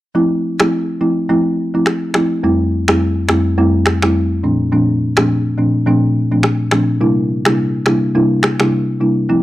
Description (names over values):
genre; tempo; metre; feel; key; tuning
afrobeats; 105 BPM; 4/4; swing 58% on 16ths; F major; A4 = 440 Hz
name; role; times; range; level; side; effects
folk marimba with medium mallets; accompaniment; 0.1-9.4 s; F2 to E4; -13 LUFS; equal; none
electronic finger snaps and rim click; drums; 0.6-8.7 s; none; -16 LUFS; equal; none
room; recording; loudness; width
little or no reverb; dry, gritty hardware recording; -13 LUFS; side -16 dB against mid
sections
0.2-9.4 A section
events
kick muted 7.0-9.3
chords
0.2 Fmaj7; 4.4 Bbmaj7; 7.0 C7